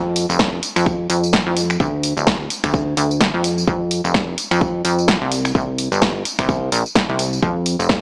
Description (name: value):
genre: piano house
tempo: 128 BPM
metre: 4/4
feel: swing 57% on 16ths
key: unclear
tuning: A4 = 441 Hz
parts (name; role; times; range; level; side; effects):
- plucky analog bass; bass; 0.0-8.0 s; D1 to F2; -22 LUFS; equal; sidechain pumping
- punchy analog drum machine; drums; 0.2-8.0 s; finger snaps, hi-hat, snare drum, tambourine; -22 LUFS; equal; studio reverb
- electronic kick drum; drums; 0.4-8.0 s; none; -23 LUFS; equal; studio reverb
room: light reverb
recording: small speaker sound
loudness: -19 LUFS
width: mono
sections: 0.0-8.0 A section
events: none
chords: none